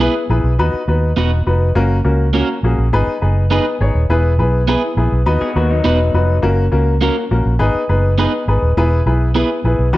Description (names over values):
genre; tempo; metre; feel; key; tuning
soul; 103 BPM; 4/4; straight; unclear; A4 = 439 Hz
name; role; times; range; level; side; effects
clear upright piano; accompaniment; 0.0-10.0 s; D#3 to C#5; -18 LUFS; left 2 dB; none
electric guitar at the edge of break-up; stabs; 0.0-9.5 s; A#3 to B4; -20 LUFS; right 5 dB; none
vintage muted fingered electric bass; bass; 0.0-9.9 s; D#1 to D#2; -15 LUFS; equal; none
electric guitar through a small old amp; riff; 5.4-6.4 s; F#3 to G#4; -22 LUFS; left 4 dB; spring reverb
room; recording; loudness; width
light reverb; dark, warm production; -13 LUFS; side -17 dB against mid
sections
0.0-10.0 A section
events
none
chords
0.0 E; 0.6 B/D#; 1.8 F#; 2.9 G#m; 4.1 E; 5.3 B/D#; 6.4 F#; 7.6 G#m; 8.8 E